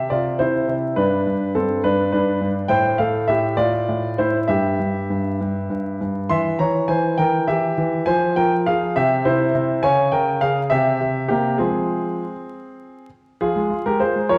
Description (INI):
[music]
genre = classical-period piano sonatina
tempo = 68 BPM (dotted quarters)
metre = 6/8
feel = straight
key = F minor from 6.3 s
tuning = A4 = 441 Hz
[part]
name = clear grand piano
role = solo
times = 0.0-14.4 s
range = G2 to C6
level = -20 LUFS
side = equal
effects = none
[sound]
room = wet recital hall reverb, RT60 1.5 s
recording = vinyl crackle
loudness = -20 LUFS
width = mono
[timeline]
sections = 0.0-13.4 A section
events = none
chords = 0.0 C; 1.0 G; 2.7 Am; 4.5 N.C.; 6.3 C7/E; 8.1 Fm; 9.0 C; 9.8 Db5; 10.7 C7; 11.6 Fm; 13.4 Fmadd9